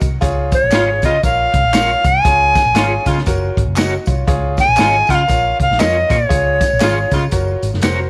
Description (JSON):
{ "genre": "uptempo 1960s-style soul", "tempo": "118 BPM", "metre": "4/4", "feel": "swing 60% on 8ths", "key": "Db major", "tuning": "A4 = 442 Hz", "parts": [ { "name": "bright concert grand piano", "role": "accompaniment", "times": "0.0-8.1 s", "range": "F4 to Eb5", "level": "-26 LUFS", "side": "equal", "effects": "none" }, { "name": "vintage muted picked electric bass", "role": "bass", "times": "0.0-8.1 s", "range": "F1 to Db3", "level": "-22 LUFS", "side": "equal", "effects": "none" }, { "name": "vintage drum kit", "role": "drums", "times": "0.0-8.0 s", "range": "hi-hat, kick drum, snare drum", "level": "-21 LUFS", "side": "equal", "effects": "none" }, { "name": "tambourine and handclaps", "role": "percussion", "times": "0.0-8.0 s", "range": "none", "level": "-33 LUFS", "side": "equal", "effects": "none" }, { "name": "bright tenor recorder", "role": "melody", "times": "0.5-7.1 s", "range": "Db5 to Ab5", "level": "-16 LUFS", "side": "equal", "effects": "none" }, { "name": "bright horn section", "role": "second line", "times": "0.7-7.2 s", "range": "Db3 to F4", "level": "-26 LUFS", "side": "equal", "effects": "none" }, { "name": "electric guitar through a small old amp", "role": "stabs", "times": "0.7-8.0 s", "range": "Db4 to Db5", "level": "-27 LUFS", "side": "equal", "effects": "tremolo" } ], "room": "light reverb", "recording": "none", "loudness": "-14 LUFS", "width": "mono", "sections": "0.0-8.1 A section", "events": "none", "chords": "0.2 Db; 1.2 Bbm; 2.2 Db; 3.3 Gb; 4.3 Db; 5.3 Bbm; 6.3 Db; 7.3 Gb", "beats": "| 0.22 0.73 1.24 1.74 | 2.25 2.76 3.26 3.77 | 4.28 4.78 5.29 5.80 | 6.31 6.81 7.32 7.83" }